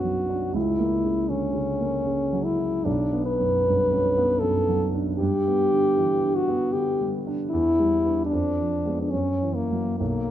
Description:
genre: classical, romantic duo for French horn and grand piano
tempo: 65-80 BPM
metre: 3/4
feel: rubato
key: B minor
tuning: A4 = 440 Hz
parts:
  - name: warm French horn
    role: melody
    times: 0.0-10.3 s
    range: A#3 to B4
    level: -23 LUFS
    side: left 1 dB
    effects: none
  - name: dark grand piano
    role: accompaniment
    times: 0.0-10.3 s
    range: B1 to E4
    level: -26 LUFS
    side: right 2 dB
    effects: none
room: moderate recital hall reverb, RT60 1.5 s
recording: close, detailed microphones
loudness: -21 LUFS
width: side -11 dB against mid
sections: 0.0-10.3 A section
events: none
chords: 0.0 Bm; 0.6 F#7/C#; 2.9 B5; 5.2 G; 7.5 Em7; 8.3 Fdim7; 9.1 F#7

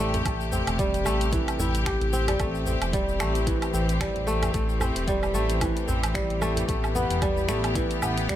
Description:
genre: organic downtempo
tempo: 112 BPM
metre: 4/4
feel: swing 56% on 16ths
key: A minor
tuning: A4 = 440 Hz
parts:
  - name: clear studio string section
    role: sustained chords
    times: 0.0-8.4 s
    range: C3 to G4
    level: -31 LUFS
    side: left 2 dB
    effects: sidechain pumping
  - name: kora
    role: arpeggios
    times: 0.0-8.4 s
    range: E3 to G4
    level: -27 LUFS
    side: equal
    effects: ping-pong delay
  - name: smooth synth bass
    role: bass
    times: 0.0-8.4 s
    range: E1 to A1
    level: -28 LUFS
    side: equal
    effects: tube saturation, sidechain pumping
  - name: deep house drum kit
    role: drums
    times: 0.1-8.4 s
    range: finger snaps, hi-hat, shaker, woodblock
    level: -33 LUFS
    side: right 2 dB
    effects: none
  - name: djembe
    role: percussion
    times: 0.1-8.1 s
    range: none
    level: -36 LUFS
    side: right 1 dB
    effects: none
  - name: electronic kick drum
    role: drums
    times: 0.3-8.4 s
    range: none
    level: -32 LUFS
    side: equal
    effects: none
room: light reverb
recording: none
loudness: -23 LUFS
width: side -12 dB against mid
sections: 0.0-8.4 A section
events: none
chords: 0.0 Am7; 6.7 G6

